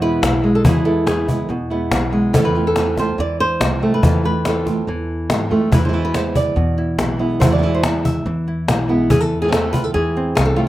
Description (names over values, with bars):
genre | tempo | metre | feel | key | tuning
flamenco | 142 BPM | 4/4 | straight | E phrygian dominant | A4 = 438 Hz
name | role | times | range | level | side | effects
flamenco guitar | melody | 0.0-10.7 s | B2 to E5 | -19 LUFS | equal | slapback echo
flamenco guitar | stabs | 0.0-10.7 s | B2 to F4 | -22 LUFS | right 2 dB | slapback echo
upright bass | bass | 0.0-10.7 s | B1 to G#2 | -22 LUFS | equal | none
cajon | percussion | 0.2-10.6 s | none | -19 LUFS | left 1 dB | slapback echo
room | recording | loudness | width
little or no reverb | recorded outdoors, with no room sound | -15 LUFS | side -15 dB against mid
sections
0.0-10.7 A section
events
none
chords
0.0 E; 2.3 F; 5.7 E; 9.1 F/E